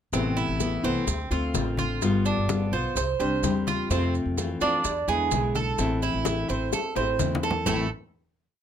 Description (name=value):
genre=latin, Cuban son and guajira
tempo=128 BPM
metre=4/4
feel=straight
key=A minor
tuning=A4 = 440 Hz
part: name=nylon-string guitar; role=accompaniment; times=0.1-7.9 s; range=A2 to G4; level=-28 LUFS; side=left 3 dB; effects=none
part: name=Cuban tres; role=arpeggios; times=0.1-7.9 s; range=A3 to C5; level=-28 LUFS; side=right 5 dB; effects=none
part: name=upright bass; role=bass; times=0.1-7.9 s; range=G1 to F2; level=-30 LUFS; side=equal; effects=none
part: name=bongos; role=percussion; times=0.1-7.8 s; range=none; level=-35 LUFS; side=left 9 dB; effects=none
part: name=congas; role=percussion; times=0.1-7.8 s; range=none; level=-33 LUFS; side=left 3 dB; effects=none
part: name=maracas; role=percussion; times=0.1-7.8 s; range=none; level=-36 LUFS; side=right 7 dB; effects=none
room=light reverb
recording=close, detailed microphones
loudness=-23 LUFS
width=side -9 dB against mid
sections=0.1-7.7 A section; 7.7-8.6 final chord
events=drum fill 6.7-7.7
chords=0.1 Amadd9; 1.1 Dm7; 2.0 G7; 3.0 Csus2; 3.9 Fmaj7; 4.8 E7; 5.8 Am